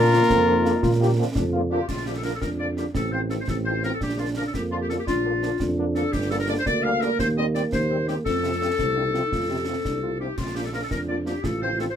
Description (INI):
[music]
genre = military-style march for wind band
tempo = 113 BPM (dotted quarters)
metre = 6/8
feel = straight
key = Bb major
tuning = A4 = 439 Hz
[part]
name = warm cornet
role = melody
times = 0.0-11.8 s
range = C4 to Bb4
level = -28 LUFS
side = left 3 dB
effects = none
[part]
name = mellow euphonium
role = second line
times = 0.0-11.9 s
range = Bb3 to G4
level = -28 LUFS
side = right 2 dB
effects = none
[part]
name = warm woodwind section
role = second line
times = 0.0-11.9 s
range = F4 to F5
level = -26 LUFS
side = left 3 dB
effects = none
[part]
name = dark trombone section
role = sustained chords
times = 0.0-1.8 s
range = C4 to G4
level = -29 LUFS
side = left 3 dB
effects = none
[part]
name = mellow tuba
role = bass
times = 0.0-11.9 s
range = G1 to Bb2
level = -27 LUFS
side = right 2 dB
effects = none
[part]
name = warm French horn section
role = accompaniment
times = 0.1-11.9 s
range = C3 to C4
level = -31 LUFS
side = left 1 dB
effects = none
[part]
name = concert snare drum, concert bass drum and clash cymbals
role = drums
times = 0.3-12.0 s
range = none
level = -31 LUFS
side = equal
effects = none
[sound]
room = moderate booth ambience, RT60 0.3 s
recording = minimal, uncompressed stereo recording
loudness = -21 LUFS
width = side -9 dB against mid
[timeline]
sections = 0.0-1.9 A section; 1.9-12.0 A section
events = none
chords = 0.0 Bb; 2.9 F7/A; 4.0 Bb; 6.1 Gm; 7.2 Cm/Eb; 8.3 F; 10.4 Bb; 11.4 F7/A